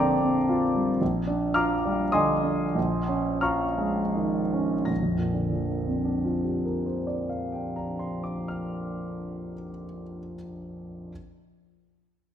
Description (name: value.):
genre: classical, impressionist solo piano.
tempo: 38-58 BPM.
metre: 3/4.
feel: rubato.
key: Bb major.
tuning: A4 = 439 Hz.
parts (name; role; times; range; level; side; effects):
clear concert grand piano; solo; 0.0-11.1 s; Bb1 to Bb6; -25 LUFS; equal; none.
room: moderate scoring stage reverb, RT60 1.7 s.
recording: minimal, uncompressed stereo recording.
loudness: -24 LUFS.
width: side -9 dB against mid.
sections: 0.0-4.9 A section; 4.9-8.9 B section.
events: slowing down 0.0-4.9.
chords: 0.0 Bb69; 1.0 Bb6; 2.8 Dbadd9/Bb; 4.9 Bb69.